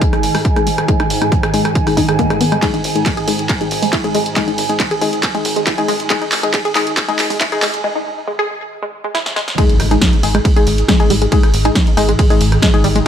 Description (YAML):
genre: driving peak-time techno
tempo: 138 BPM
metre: 4/4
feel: straight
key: unclear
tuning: A4 = 445 Hz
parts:
  - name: swarming drone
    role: drone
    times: 0.0-13.1 s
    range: G#2 to D#3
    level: -24 LUFS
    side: equal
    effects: built-in reverb, sidechain pumping
  - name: electronic kick drum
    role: drums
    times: 0.0-12.7 s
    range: none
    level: -16 LUFS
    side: equal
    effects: overdrive
  - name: punchy analog drum machine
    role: drums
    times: 0.0-13.0 s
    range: handclaps, hi-hat, ride cymbal, rim click, snare drum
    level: -19 LUFS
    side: right 1 dB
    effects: none
  - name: airy breathy pad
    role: texture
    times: 0.0-13.1 s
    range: D#4 to G#5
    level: -23 LUFS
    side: right 4 dB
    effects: chorus, sidechain pumping
  - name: tight sequenced synth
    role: riff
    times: 0.1-13.0 s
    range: G3 to G#4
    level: -21 LUFS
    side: equal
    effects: chorus, tube saturation, sidechain pumping, dub echo
  - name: filtered dub chord stab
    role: stabs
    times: 0.1-12.8 s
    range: G#3 to G#4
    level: -20 LUFS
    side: left 5 dB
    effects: chorus, sidechain pumping, ping-pong delay
  - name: tight sequencer bass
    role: bass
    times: 0.2-13.0 s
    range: G#1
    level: -21 LUFS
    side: equal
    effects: sidechain pumping, high-pass filter
  - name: impact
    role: sound effects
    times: 9.7-11.3 s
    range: none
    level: -24 LUFS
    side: equal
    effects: none
room: moderate stone room reverb, RT60 1.2 s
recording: high-pass filter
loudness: -12 LUFS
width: side -9 dB against mid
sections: 0.0-9.6 A section; 9.6-13.1 B section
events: build-up 0.0-9.6; filter sweep on synth arpeggio sound 0.0-9.6; filter sweep on synth stab 0.0-9.6; filter sweep 0.0-9.6; drum fill 2.6-7.8, 9.1-9.6; break 7.8-9.6; drop 9.6-13.1; impact 9.6-11.3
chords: 0.0 G#5